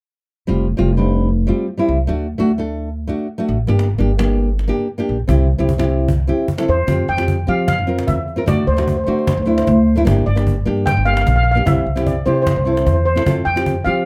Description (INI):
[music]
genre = calypso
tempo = 150 BPM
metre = 4/4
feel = straight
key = F major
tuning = A4 = 445 Hz
[part]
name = nylon-string guitar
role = accompaniment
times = 0.5-14.1 s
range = G3 to Bb4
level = -22 LUFS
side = equal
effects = none
[part]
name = upright bass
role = bass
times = 0.5-14.1 s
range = F1 to F3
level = -20 LUFS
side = equal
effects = none
[part]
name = cajon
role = drums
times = 3.7-14.0 s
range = none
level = -24 LUFS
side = equal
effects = none
[part]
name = steel pan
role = melody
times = 6.7-14.0 s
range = C5 to G5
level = -22 LUFS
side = equal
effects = none
[sound]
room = light reverb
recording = none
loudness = -17 LUFS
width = mono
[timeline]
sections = 0.5-6.9 A section; 6.9-14.1 B section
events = none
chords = 0.5 Fsus2; 2.1 D; 3.7 Gm; 5.3 C; 6.9 Fsus2; 8.5 D; 10.1 Gm; 11.7 C; 13.3 F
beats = | 0.48 0.88 1.28 1.68 | 2.08 2.48 2.88 3.29 | 3.69 4.08 4.49 4.88 | 5.28 5.68 6.08 6.48 | 6.88 7.28 7.68 8.07 | 8.47 8.87 9.27 9.67 | 10.07 10.47 10.87 11.26 | 11.66 12.06 12.46 12.86 | 13.26 13.66